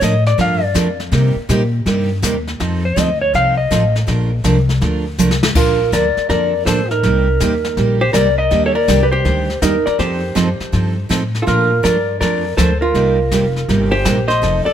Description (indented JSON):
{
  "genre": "country, western swing",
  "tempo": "162 BPM",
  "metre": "4/4",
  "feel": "swing 66% on 8ths",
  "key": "Bb major",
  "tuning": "A4 = 441 Hz",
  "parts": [
    { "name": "clean lap steel guitar", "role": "melody", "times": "0.0-14.7 s", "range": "A4 to F5", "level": "-18 LUFS", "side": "left 1 dB", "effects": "none" },
    { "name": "picked steel-string acoustic guitar", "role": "accompaniment", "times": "0.0-14.6 s", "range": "C3 to Bb4", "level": "-19 LUFS", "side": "right 3 dB", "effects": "none" },
    { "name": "upright bass", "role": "bass", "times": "0.0-14.7 s", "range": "F1 to C3", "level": "-18 LUFS", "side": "left 1 dB", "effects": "none" },
    { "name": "jazz brush drum kit", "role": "drums", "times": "0.0-14.7 s", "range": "brushed snare drum, crash cymbal, hi-hat, kick drum, snare drum", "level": "-23 LUFS", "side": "left 2 dB", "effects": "none" },
    { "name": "archtop guitar, miked and amplified", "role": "second line", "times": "5.6-14.7 s", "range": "Eb4 to C5", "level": "-22 LUFS", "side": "right 3 dB", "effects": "none" }
  ],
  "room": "light reverb",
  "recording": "none",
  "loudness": "-13 LUFS",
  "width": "side -10 dB against mid",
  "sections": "0.0-5.6 A section; 5.6-14.7 B section",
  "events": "electric slide guitar solo 0.0-5.6; drum fill 5.2-5.6",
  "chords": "0.0 Bbmaj7; 1.1 Cm7; 2.6 F7; 4.1 Bbmaj9; 5.6 Bbmaj7; 7.0 Cm7; 8.5 Ebmaj7; 10.0 F9; 11.5 Bbmaj7; 12.9 Cm7",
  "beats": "0.01 0.38 0.75 | 1.12 1.49 1.86 2.23 | 2.60 2.96 3.33 3.70 | 4.07 4.44 4.81 5.18 | 5.55 5.92 6.29 6.66 | 7.03 7.40 7.77 8.14 | 8.51 8.88 9.25 9.62 | 9.99 10.36 10.73 11.10 | 11.47 11.84 12.21 12.58 | 12.95 13.31 13.68 14.05 | 14.42"
}